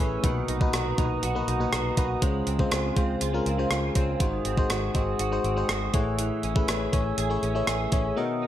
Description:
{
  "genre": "1980s-style pop",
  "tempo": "121 BPM",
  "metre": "4/4",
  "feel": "straight",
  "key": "unclear",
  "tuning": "A4 = 440 Hz",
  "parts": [
    { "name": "FM electric piano", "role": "accompaniment", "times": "0.0-8.5 s", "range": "Ab2 to Eb5", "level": "-28 LUFS", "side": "left 3 dB", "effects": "chorus" },
    { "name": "glass harmonica", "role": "sustained chords", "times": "0.0-8.5 s", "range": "A3 to E6", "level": "-34 LUFS", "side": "right 2 dB", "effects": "none" },
    { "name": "direct-recorded clean electric guitar", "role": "riff", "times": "0.0-8.5 s", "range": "Eb3 to G#4", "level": "-34 LUFS", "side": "right 7 dB", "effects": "ensemble chorus, tape echo" },
    { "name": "vintage muted fingered electric bass", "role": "bass", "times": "0.0-8.1 s", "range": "Ab1 to Db2", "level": "-31 LUFS", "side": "equal", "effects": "none" },
    { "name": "clean 12-bit digital drum machine", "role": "drums", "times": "0.2-8.0 s", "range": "hi-hat, kick drum, rim click", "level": "-26 LUFS", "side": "equal", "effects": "overdrive, gated reverb" }
  ],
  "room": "light reverb, digital ambience",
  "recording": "none",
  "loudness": "-23 LUFS",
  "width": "side -12 dB against mid",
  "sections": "0.0-8.5 A section",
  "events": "none",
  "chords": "0.2 Cbmaj7; 2.2 Dbmaj7; 4.2 Ab7; 5.9 Amaj7",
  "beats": "| 0.24 0.73 1.23 1.73 | 2.22 2.72 3.21 3.71 | 4.21 4.70 5.20 5.69 | 6.19 6.68 7.18 7.68 | 8.17"
}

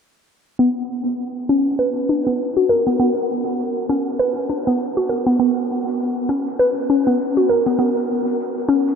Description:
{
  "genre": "organic downtempo",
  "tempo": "100 BPM",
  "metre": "4/4",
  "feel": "swing 58% on 16ths",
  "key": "B harmonic minor",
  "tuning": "A4 = 440 Hz",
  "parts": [
    { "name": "mallet-like synth pluck", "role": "arpeggios", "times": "0.6-8.9 s", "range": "B3 to B4", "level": "-17 LUFS", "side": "equal", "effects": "chorus, phaser, diffuse ambient delay" },
    { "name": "cabasa", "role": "drums", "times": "0.6-9.0 s", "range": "none", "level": "-51 LUFS", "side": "right 1 dB", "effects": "none" }
  ],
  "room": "wet huge ambient reverb, RT60 8.7 s",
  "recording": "dreamy mix soaked in reverb, low-pass filter",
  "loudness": "-17 LUFS",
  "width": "side -6 dB against mid",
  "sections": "0.6-9.0 A section",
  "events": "filter sweep on synth pluck 0.6-9.0; filter sweep 0.6-9.0",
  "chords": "none",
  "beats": "| 0.59 1.19 1.79 2.39 | 2.99 3.59 4.19 4.79 | 5.39 5.99 6.59 7.19 | 7.79 8.39"
}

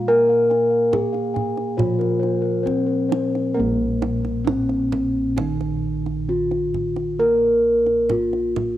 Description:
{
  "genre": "Javanese gamelan",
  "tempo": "66-72 BPM",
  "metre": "4/4",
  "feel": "straight",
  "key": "Bb slendro",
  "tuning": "A4 = 440 Hz",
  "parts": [
    { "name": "gamelan-type bronze metallophone", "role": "melody", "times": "0.0-8.8 s", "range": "Bb3 to Bb4", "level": "-20 LUFS", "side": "left 1 dB", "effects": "none" },
    { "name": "gamelan-type bronze metallophone", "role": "accompaniment", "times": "0.0-8.8 s", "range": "Eb3-35c to Bb3", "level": "-28 LUFS", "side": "right 8 dB", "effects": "cassette tape" },
    { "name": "gamelan-type bossed gongs", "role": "bass", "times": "0.0-8.8 s", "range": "Bb1 to Bb4", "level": "-26 LUFS", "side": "equal", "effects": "none" },
    { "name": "gamelan-type bossed gongs", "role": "arpeggios", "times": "0.1-3.3 s", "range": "Bb4 to Ab5-45c", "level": "-29 LUFS", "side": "left 7 dB", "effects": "cassette tape" },
    { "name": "kendang", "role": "percussion", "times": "0.5-8.8 s", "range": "none", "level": "-27 LUFS", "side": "right 6 dB", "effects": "none" }
  ],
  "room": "light reverb, small room ambience",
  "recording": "home recording on cassette",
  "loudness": "-18 LUFS",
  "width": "side -13 dB against mid",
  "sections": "0.0-3.6 A section; 3.6-8.8 B section",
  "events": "none",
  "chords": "none",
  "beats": "| 0.07 0.92 1.78 2.66 | 3.56 4.46 5.37 6.28 | 7.19 8.10"
}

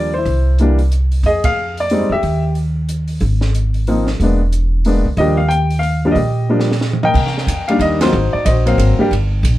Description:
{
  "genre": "jazz piano trio",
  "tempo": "183 BPM",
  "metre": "3/4",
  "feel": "swing 61% on 8ths",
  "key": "Eb major",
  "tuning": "A4 = 442 Hz",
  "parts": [
    { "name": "warm upright piano", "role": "melody", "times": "0.0-9.1 s", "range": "Eb3 to G5", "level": "-16 LUFS", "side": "left 1 dB", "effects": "none" },
    { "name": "upright bass", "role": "bass", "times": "0.0-9.6 s", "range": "E1 to C3", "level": "-16 LUFS", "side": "equal", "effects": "none" },
    { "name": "compact cocktail drum kit", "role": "drums", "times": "0.3-9.5 s", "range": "crash cymbal, hi-hat, kick drum, ride cymbal, snare drum, toms", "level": "-24 LUFS", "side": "right 2 dB", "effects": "none" }
  ],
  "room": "wet small room ambience, RT60 0.5 s",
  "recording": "heard from further back in the room",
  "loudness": "-13 LUFS",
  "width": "side -15 dB against mid",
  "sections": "0.0-7.2 A section; 7.2-9.6 B section",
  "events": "band accent 1.4, 8.0; drum fill 6.5-7.2",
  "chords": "0.3 C; 1.3 Fm9; 2.2 Eb; 3.2 N.C.; 4.2 E7#11; 5.2 Ebmaj9; 7.2 Cm9; 8.1 Ab13",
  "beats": "| 0.27 0.60 0.93 | 1.25 1.58 1.91 | 2.23 2.56 2.89 | 3.22 3.54 3.87 | 4.20 4.53 4.86 | 5.18 5.51 5.84 | 6.17 6.50 6.82 | 7.15 7.48 7.80 | 8.13 8.46 8.79 | 9.11 9.44"
}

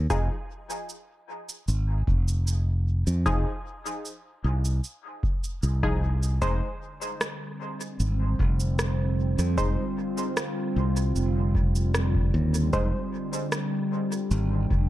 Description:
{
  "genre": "ambient dub",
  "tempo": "76 BPM",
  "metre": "4/4",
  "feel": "straight",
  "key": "unclear",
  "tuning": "A4 = 439 Hz",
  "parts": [
    { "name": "modern bright fingered electric bass", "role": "bass", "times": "0.0-14.9 s", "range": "F1 to F2", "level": "-24 LUFS", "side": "equal", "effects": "none" },
    { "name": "filtered dub chord stab", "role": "stabs", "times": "0.1-13.0 s", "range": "F3 to C5", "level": "-32 LUFS", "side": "left 1 dB", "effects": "chorus, dub echo" },
    { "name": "electronic kick drum", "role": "drums", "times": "0.1-14.9 s", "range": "none", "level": "-28 LUFS", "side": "equal", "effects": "none" },
    { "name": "electronic shaker and rim click", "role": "drums", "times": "0.1-14.5 s", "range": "none", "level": "-33 LUFS", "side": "right 1 dB", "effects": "dub echo" },
    { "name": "warbly tape-like pad", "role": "sustained chords", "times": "7.2-14.9 s", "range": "D3 to G5", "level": "-30 LUFS", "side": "equal", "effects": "chorus, built-in reverb" }
  ],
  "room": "digital ambience",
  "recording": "none",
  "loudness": "-24 LUFS",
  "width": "side -14 dB against mid",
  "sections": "0.0-14.9 A section",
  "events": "none",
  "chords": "0.0 Fm7; 6.4 Ab/F",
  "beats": "| 0.10 0.89 1.68 2.47 | 3.26 4.05 4.84 5.63 | 6.42 7.21 8.00 8.79 | 9.58 10.37 11.15 11.95 | 12.73 13.52 14.31"
}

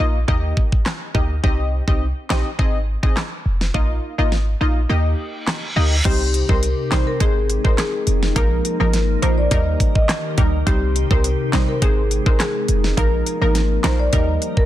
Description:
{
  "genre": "dancehall",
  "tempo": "104 BPM",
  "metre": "4/4",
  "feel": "straight",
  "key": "C minor",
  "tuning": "A4 = 440 Hz",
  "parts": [
    { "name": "punchy chord stab", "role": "accompaniment", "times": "0.0-14.7 s", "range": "F3 to Eb5", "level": "-24 LUFS", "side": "equal", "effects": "chorus" },
    { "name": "clean 808-style bass", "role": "bass", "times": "0.0-14.4 s", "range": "F1 to Eb2", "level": "-19 LUFS", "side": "equal", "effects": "none" },
    { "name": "pop drum kit", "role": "drums", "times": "0.3-14.7 s", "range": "crash cymbal, handclaps, hi-hat, kick drum, rim click, snare drum", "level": "-20 LUFS", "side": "equal", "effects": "soft clipping on snare, vintage 12-bit sampler grit" },
    { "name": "reverse cymbal", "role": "sound effects", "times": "5.2-6.1 s", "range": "none", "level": "-26 LUFS", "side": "right 2 dB", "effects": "none" },
    { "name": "marimba with medium mallets", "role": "melody", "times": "6.1-14.7 s", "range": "G4 to Eb5", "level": "-24 LUFS", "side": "left 1 dB", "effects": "ping-pong delay" },
    { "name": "glassy FM pad", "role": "sustained chords", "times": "6.3-14.7 s", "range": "C3 to Bb4", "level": "-27 LUFS", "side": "left 2 dB", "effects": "ensemble chorus, built-in reverb, sidechain pumping" }
  ],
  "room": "little or no reverb",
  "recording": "dense, heavily limited modern master",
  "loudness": "-16 LUFS",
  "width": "side -13 dB against mid",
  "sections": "0.0-6.1 A section; 6.1-14.7 B section",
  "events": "kick muted 4.9-6.1; reverse cymbal 5.2-6.1",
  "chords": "0.3 Eb; 1.4 Cm; 2.6 Ab; 3.7 Bbsus4; 4.9 Eb; 6.1 Cm; 7.2 Ab; 8.4 Bbsus4; 9.5 Eb; 10.7 Cm; 11.8 Ab; 13.0 Bbsus4; 14.1 Eb",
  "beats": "0.28 0.86 | 1.44 2.01 2.59 3.17 | 3.74 4.32 4.90 5.47 | 6.05 6.63 7.21 7.78 | 8.36 8.94 9.51 10.09 | 10.67 11.24 11.82 12.40 | 12.97 13.55 14.13"
}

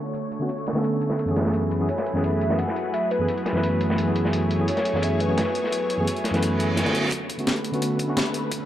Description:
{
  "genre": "liquid drum and bass",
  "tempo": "172 BPM",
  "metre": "4/4",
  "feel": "straight",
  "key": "unclear",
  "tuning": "A4 = 439 Hz",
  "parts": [
    { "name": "lush unison pad", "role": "sustained chords", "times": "0.0-8.7 s", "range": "D3 to C#5", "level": "-28 LUFS", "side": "right 1 dB", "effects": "chorus, sidechain pumping" },
    { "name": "breakbeat sampler-style drum kit", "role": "drums", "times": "0.1-8.6 s", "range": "hi-hat, snare drum", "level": "-30 LUFS", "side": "left 1 dB", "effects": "none" },
    { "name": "crunchy breakbeat drum kit", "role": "drums", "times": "0.1-7.1 s", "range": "hi-hat, ride cymbal, snare drum", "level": "-31 LUFS", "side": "equal", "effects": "high-pass filter on cymbals, low-pass filter on cymbals, high-pass filter on hats, low-pass filter on hats, high-pass filter on snare, low-pass filter on snare, high-pass filter on room, low-pass filter on room" },
    { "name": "bright tine electric piano", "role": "accompaniment", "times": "0.4-8.2 s", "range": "F#2 to B4", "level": "-24 LUFS", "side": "equal", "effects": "none" },
    { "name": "hollow clarinet-like synth lead", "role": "melody", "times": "1.9-6.8 s", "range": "B4 to F#5", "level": "-29 LUFS", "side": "left 1 dB", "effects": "chorus, dub echo" },
    { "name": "reverse cymbal and riser", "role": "sound effects", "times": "6.5-8.7 s", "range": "none", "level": "-31 LUFS", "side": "right 2 dB", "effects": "none" },
    { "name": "electronic kick drum", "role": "drums", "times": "7.1-8.6 s", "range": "none", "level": "-38 LUFS", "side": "equal", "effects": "overdrive, high-pass filter on kick" }
  ],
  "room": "wet plate reverb, RT60 2.0 s, small room ambience",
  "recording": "dark, warm production, low-pass filter",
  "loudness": "-21 LUFS",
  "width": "side -12 dB against mid",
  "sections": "0.0-7.1 A section; 7.1-8.7 B section",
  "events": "filter sweep on analog synth pad 0.0-7.1, 7.1-8.7; filter sweep 0.0-7.1; reverse cymbal 6.5-7.1; build-up 7.1-8.7",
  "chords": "0.0 F#m11; 6.9 Bm7",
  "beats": "| 0.14 0.49 0.84 1.19 | 1.54 1.89 2.24 2.59 | 2.94 3.28 3.63 3.98 | 4.33 4.68 5.03 5.38 | 5.73 6.08 6.42 6.77 | 7.12 7.47 7.82 8.17 | 8.52"
}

